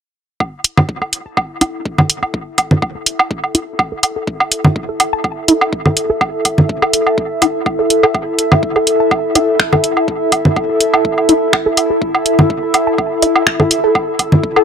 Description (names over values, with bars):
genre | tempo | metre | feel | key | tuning
minimal techno | 124 BPM | 4/4 | swing 54% on 16ths | unclear | A4 = 439 Hz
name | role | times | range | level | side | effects
electronic kick drum | drums | 0.4-14.5 s | none | -23 LUFS | left 1 dB | high-pass filter on kick
woodblock and congas | percussion | 0.4-14.6 s | none | -14 LUFS | right 1 dB | dub echo
warbly tape-like pad | texture | 1.5-14.6 s | E4 to E5 | -16 LUFS | equal | chorus, built-in reverb, sidechain pumping
punchy analog drum machine | drums | 0.6-14.3 s | finger snaps, hi-hat | -13 LUFS | equal | overdrive
resonant blip pluck | riff | 1.0-14.6 s | E4 to A5 | -17 LUFS | equal | phaser, sidechain pumping, dub echo
room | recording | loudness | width
moderate studio reverb, RT60 0.5 s | dark, warm production | -12 LUFS | side -7 dB against mid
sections
0.4-14.6 A section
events
filter sweep on synth arpeggio sound 0.4-14.6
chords
0.4 A5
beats
| 0.40 0.89 1.37 1.85 | 2.34 2.82 3.31 3.79 | 4.27 4.76 5.24 5.73 | 6.21 6.69 7.18 7.66 | 8.14 8.63 9.11 9.60 | 10.08 10.56 11.05 11.53 | 12.02 12.50 12.98 13.47 | 13.95 14.44